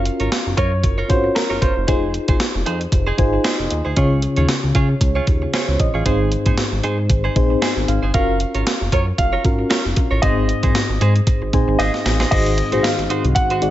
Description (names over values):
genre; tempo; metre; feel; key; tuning
1980s-style pop; 115 BPM; 4/4; swing 55% on 16ths; unclear; A4 = 436 Hz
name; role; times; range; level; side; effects
warm baby grand piano; melody; 0.0-2.6, 8.1-13.7 s; Bb4 to Gb5; -24 LUFS; right 1 dB; digital delay
FM electric piano with tremolo; accompaniment; 0.0-13.7 s; Ab2 to Ab5; -21 LUFS; left 2 dB; phaser
direct-recorded clean electric guitar; riff; 0.0-13.7 s; Eb4 to Db5; -27 LUFS; right 4 dB; lush chorus, digital delay
chorused synth bass; bass; 0.0-13.7 s; F1 to Db3; -21 LUFS; equal; none
gated 80s digital drum machine; drums; 0.1-13.7 s; crash cymbal, hi-hat, kick drum, snare drum; -20 LUFS; equal; gated reverb, gated reverb snare
warm analog pad; sustained chords; 12.3-13.7 s; Eb3 to Gb4; -26 LUFS; equal; lush chorus
tambourine; percussion; 12.8-13.0 s; none; -37 LUFS; right 9 dB; none
room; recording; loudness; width
light reverb; nothing above 7.8 kHz; -15 LUFS; side -13 dB against mid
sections
0.0-12.3 A section; 12.3-13.7 B section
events
FM electric piano fill 2.9-4.0, 7.4-8.1, 11.3-12.3; drum fill 11.8-12.3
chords
0.0 Gbmaj7; 1.9 Fm7; 4.0 Db; 6.1 Ab; 8.1 Gbmaj7; 10.2 Ab; 12.3 Ab7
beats
0.32 0.84 1.36 | 1.88 2.40 2.93 3.45 | 3.97 4.49 5.01 5.54 | 6.06 6.58 7.10 7.62 | 8.14 8.66 9.19 9.71 | 10.23 10.75 11.27 11.79 | 12.32 12.84 13.36